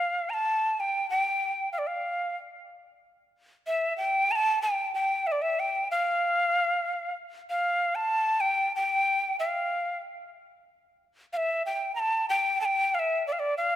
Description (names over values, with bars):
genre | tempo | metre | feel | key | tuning
andean folk | 94 BPM | 3/4 | straight | unclear | A4 = 439 Hz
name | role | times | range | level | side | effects
breathy quena | solo | 0.0-13.8 s | D5 to Bb5 | -25 LUFS | equal | none
room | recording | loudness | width
moderate plate reverb, RT60 2.4 s | rough home demo mix | -25 LUFS | side -12 dB against mid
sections
0.0-13.8 A section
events
none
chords
none